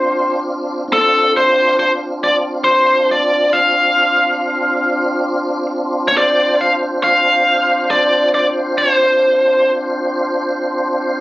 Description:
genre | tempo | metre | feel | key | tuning
blues | 46 BPM (dotted quarters) | 12/8 | straight | D minor | A4 = 440 Hz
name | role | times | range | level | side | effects
biting lead guitar | melody | 0.0-9.7 s | A4 to F5 | -12 LUFS | equal | overdrive
tonewheel organ | sustained chords | 0.0-11.2 s | C4 to C5 | -19 LUFS | equal | slow rotary speaker, overdrive, chorus vibrato
room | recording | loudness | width
moderate studio reverb, RT60 0.5 s | recorded on a phone in the room, club reverb | -12 LUFS | side -17 dB against mid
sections
0.0-11.2 A section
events
none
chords
0.0 Dm7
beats
| 0.88 2.19 3.50 4.82 | 6.13 7.44 8.75 10.06

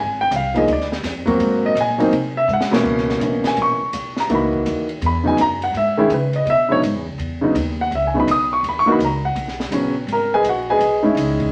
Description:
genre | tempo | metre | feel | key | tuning
modal jazz | 166 BPM | 4/4 | swing 64% on 8ths | C# dorian | A4 = 440 Hz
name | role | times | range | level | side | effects
warm grand piano | accompaniment | 0.0-11.5 s | B2 to D#6 | -19 LUFS | equal | none
upright bass | bass | 0.0-11.5 s | Ab1 to C#3 | -28 LUFS | equal | none
compact cocktail drum kit | drums | 0.3-11.5 s | crash cymbal, hi-hat, kick drum, ride cymbal, snare drum | -32 LUFS | equal | none
room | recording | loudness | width
wet studio reverb, RT60 0.8 s | vinyl crackle | -19 LUFS | mono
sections
0.0-2.9 A section; 2.9-11.5 A section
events
drum fill 2.5-2.9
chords
0.0 Fm6; 1.4 Ab7; 2.9 C#m7; 8.6 G#m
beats
0.32 0.68 1.04 | 1.40 1.76 2.13 2.49 | 2.85 3.21 3.57 3.93 | 4.30 4.66 5.02 5.38 | 5.74 6.10 6.46 6.83 | 7.19 7.55 7.91 8.27 | 8.63 8.99 9.36 9.72 | 10.08 10.44 10.80 11.16

